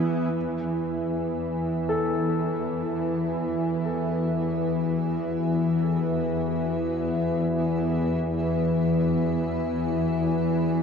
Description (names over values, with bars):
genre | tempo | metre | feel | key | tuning
dark ambient drone | free time | none | none | unclear | A4 = 440 Hz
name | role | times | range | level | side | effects
granular cloud pad | sustained chords | 0.0-10.8 s | E3 to F#4 | -34 LUFS | equal | built-in reverb, shimmer reverb
warm baby grand piano | arpeggios | 0.0-10.8 s | E2 to A4 | -34 LUFS | left 3 dB | diffuse ambient delay, shimmer reverb
bowed-like drone | drone | 0.0-10.8 s | E2 to E3 | -24 LUFS | left 1 dB | built-in reverb
icy glass pad | texture | 0.0-10.8 s | B3 to E5 | -43 LUFS | right 3 dB | chorus, built-in reverb, shimmer reverb
room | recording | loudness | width
wet cathedral reverb, RT60 5.5 s | worn, warbling old tape, cassette tape, warbly pitch drift | -23 LUFS | side -6 dB against mid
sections
0.4-10.8 A section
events
fade-in on ambient pad 0.4-10.8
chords
0.4 Esus2